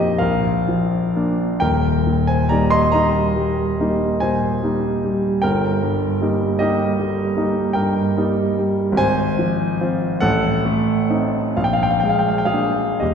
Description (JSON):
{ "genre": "classical, romantic nocturne for solo piano", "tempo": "39-53 BPM (dotted quarters)", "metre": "9/8", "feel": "rubato", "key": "Eb major", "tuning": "A4 = 440 Hz", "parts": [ { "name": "clear concert grand piano", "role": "solo", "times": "0.0-13.1 s", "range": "Eb1 to C6", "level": "-16 LUFS", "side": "equal", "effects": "none" } ], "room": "wet scoring stage reverb, RT60 2.0 s", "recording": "heard from further back in the room", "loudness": "-16 LUFS", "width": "side -7 dB against mid", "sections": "0.0-13.1 A section", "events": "none", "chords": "0.2 Bb; 1.6 Eb; 5.4 Eb/G; 9.0 Fm/Ab; 10.2 Adim7; 11.6 Bb7" }